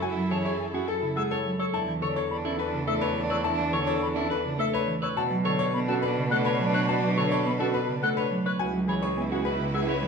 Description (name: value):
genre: classical, minimalist pattern music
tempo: 105 BPM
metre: 3/4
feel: straight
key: unclear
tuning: A4 = 440 Hz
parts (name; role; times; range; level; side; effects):
- bright grand piano; melody; 0.0-10.1 s; G#4 to A5; -31 LUFS; left 8 dB; none
- rich studio string section; sustained chords; 0.0-10.1 s; D4 to B4; -36 LUFS; equal; none
- clean electric guitar; arpeggios; 0.0-10.1 s; E4 to C#5; -31 LUFS; right 1 dB; none
- clear cello; bass; 0.0-10.1 s; C#2 to B2; -32 LUFS; right 3 dB; none
- clear soprano saxophone; second line; 0.1-10.0 s; D4 to E4; -36 LUFS; right 3 dB; none
- buzzing marimba with soft mallets; accompaniment; 0.2-10.1 s; C#3 to C#4; -31 LUFS; right 2 dB; none
- silver concert flute; arpeggios; 0.3-9.8 s; F#5 to F#6; -34 LUFS; left 4 dB; none
room: wet recital hall reverb, RT60 1.5 s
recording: none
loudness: -24 LUFS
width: side -5 dB against mid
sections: 0.0-10.1 A section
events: none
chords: 0.0 F#m7; 1.7 E7sus4; 5.2 Bm7; 8.6 C#m7